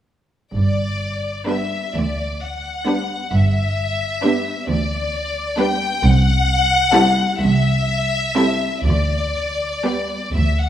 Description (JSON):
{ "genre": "classical, slow romantic movement for string orchestra", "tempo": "43 BPM (dotted quarters)", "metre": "6/8", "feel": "uneven beats, rubato", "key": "G major", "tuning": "A4 = 440 Hz", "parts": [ { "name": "warm studio violin section", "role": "melody", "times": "0.5-10.7 s", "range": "D5 to G5", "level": "-21 LUFS", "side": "left 3 dB", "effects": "none" }, { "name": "warm studio cello section", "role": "bass", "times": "0.5-10.7 s", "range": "C2 to G2", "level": "-22 LUFS", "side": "right 1 dB", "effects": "none" }, { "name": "warm studio double bass section", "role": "bass", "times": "0.5-10.7 s", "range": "G1 to D2", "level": "-20 LUFS", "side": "right 1 dB", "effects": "none" }, { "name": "warm studio violin section", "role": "second line", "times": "1.5-10.2 s", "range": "D4 to B4", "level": "-24 LUFS", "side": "left 1 dB", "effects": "none" }, { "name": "warm studio viola section", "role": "accompaniment", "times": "1.5-10.2 s", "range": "G3 to C4", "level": "-23 LUFS", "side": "right 2 dB", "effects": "none" } ], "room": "wet recital hall reverb, RT60 1.6 s", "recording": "recorded in a church or concert hall", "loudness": "-17 LUFS", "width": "side -10 dB against mid", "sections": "0.5-10.7 A section", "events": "none", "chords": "0.5 G; 6.0 Am7/C; 8.9 G/D" }